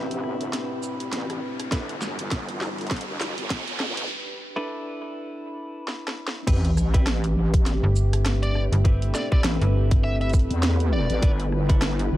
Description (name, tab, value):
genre	glitch hop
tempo	101 BPM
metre	4/4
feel	swing 58% on 16ths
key	A dorian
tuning	A4 = 439 Hz
part	dark analog pad	sustained chords	0.0-12.2 s	G3 to F#5	-35 LUFS	left 1 dB	chorus, vintage 12-bit sampler grit, sidechain pumping
part	clean electric guitar	stabs	0.0-11.8 s	C4 to B4	-33 LUFS	left 1 dB	sidechain pumping, low-pass filter, dub echo
part	wobble bass	bass	0.0-12.2 s	E1 to E2	-26 LUFS	equal	chorus, overdrive, high-pass filter
part	riser and sub drop	sound effects	0.0-8.8 s	none	-32 LUFS	equal	none
part	granular cloud pad	texture	0.0-12.2 s	D4 to B4	-37 LUFS	equal	built-in reverb, sidechain pumping
part	drum and bass drum kit	drums	0.1-12.1 s	crash cymbal, hi-hat, rim click, shaker, snare drum	-30 LUFS	equal	none
part	electronic kick drum	drums	1.7-11.8 s	none	-20 LUFS	equal	none
part	slap-like FM bass	bass	7.8-10.5 s	G1	-21 LUFS	equal	none
part	bluesy overdriven lead guitar	melody	8.4-11.3 s	D5 to E5	-33 LUFS	equal	distortion, dub echo
room	digital ambience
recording	high-pass filter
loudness	-22 LUFS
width	side -15 dB against mid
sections	0.0-6.5 A section; 6.5-12.2 B section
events	build-up 0.0-6.5; drum fill 0.0-4.1, 5.9-6.5; riser 0.0-4.1; filter sweep on clean electric guitar 0.0-6.5; filter sweep on analog synth pad 0.0-6.5; break 4.1-6.5; drop 6.5-12.2; impact 6.5-8.8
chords	0.0 Am9; 1.7 G6; 6.5 Am9; 11.2 G6